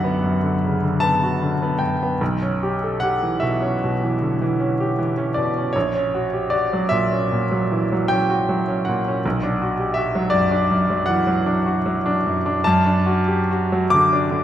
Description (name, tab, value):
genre	classical, romantic nocturne for solo piano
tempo	52 BPM (dotted quarters)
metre	9/8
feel	uneven beats, rubato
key	B minor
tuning	A4 = 440 Hz
part	clear baby grand piano	solo	0.0-14.4 s	A#1 to D6	-18 LUFS	equal	none
room	wet scoring stage reverb, RT60 1.7 s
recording	recorded in a church or concert hall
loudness	-18 LUFS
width	side -11 dB against mid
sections	0.0-14.4 A section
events	none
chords	0.0 Bm; 5.8 F#7/A#; 9.3 Bm; 12.6 D/F#